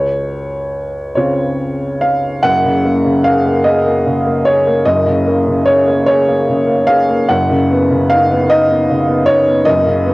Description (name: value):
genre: neoclassical minimalist piano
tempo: 50 BPM (dotted quarters)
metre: 6/8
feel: uneven beats, rubato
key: unclear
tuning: A4 = 442 Hz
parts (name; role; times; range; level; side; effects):
- warm upright piano; solo; 0.0-10.1 s; Gb1 to Gb5; -11 LUFS; equal; cassette tape
room: moderate studio reverb, RT60 0.7 s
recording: home recording on cassette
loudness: -11 LUFS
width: side -21 dB against mid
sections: 0.0-2.4 A section; 2.4-10.1 B section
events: none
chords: 0.0 Dbmaj7; 2.4 Gbadd9; 7.3 Cbadd9/Gb